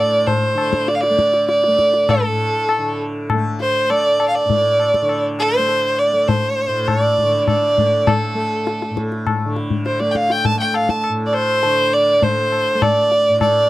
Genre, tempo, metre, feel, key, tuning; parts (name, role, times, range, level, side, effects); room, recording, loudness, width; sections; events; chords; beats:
indian classical, Hindustani; 101 BPM; 5/4; straight; A4 = 438 Hz
clear violin; melody; 0.0-13.7 s; A4 to A5; -16 LUFS; right 1 dB
tanpura; drone; 0.0-13.7 s; A2 to A3; -25 LUFS; equal
tabla; percussion; 0.3-13.6 s; -22 LUFS; left 4 dB
little or no reverb; dry, close 1970s-style studio recording; -15 LUFS; side -16 dB against mid
0.0-13.7 A section
0.28 0.88 1.49 | 2.09 2.69 3.29 3.89 4.49 | 5.09 5.69 6.29 6.88 7.48 | 8.07 8.67 9.26 9.86 10.45 | 11.04 11.63 12.22 12.81 13.40